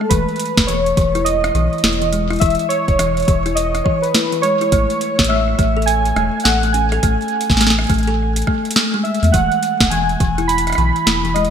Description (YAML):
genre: IDM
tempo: 104 BPM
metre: 4/4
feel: swing 62% on 16ths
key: E major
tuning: A4 = 440 Hz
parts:
  - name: warbly lo-fi synth keys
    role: melody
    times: 0.0-11.5 s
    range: B4 to B5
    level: -18 LUFS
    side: right 2 dB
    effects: chorus, shimmer reverb, digital delay
  - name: kalimba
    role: arpeggios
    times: 0.0-11.5 s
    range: E3 to A4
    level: -21 LUFS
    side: left 4 dB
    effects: vintage 12-bit sampler grit, shimmer reverb, ping-pong delay
  - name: booming analog drum machine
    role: drums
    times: 0.0-11.5 s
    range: hi-hat, rim click, snare drum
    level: -19 LUFS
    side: equal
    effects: gated reverb
  - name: round analog bass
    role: bass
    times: 0.1-11.5 s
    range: E1 to E2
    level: -20 LUFS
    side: equal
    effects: tube saturation
  - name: electronic kick drum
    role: drums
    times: 0.1-10.3 s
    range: none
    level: -19 LUFS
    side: equal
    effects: none
room: moderate lush hall reverb, RT60 1.7 s, digital ambience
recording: bright 1980s-style digital production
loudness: -14 LUFS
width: side -8 dB against mid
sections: 0.1-11.5 A section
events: none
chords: 0.1 Emaj7(no3); 4.7 Amaj7; 9.3 Eadd9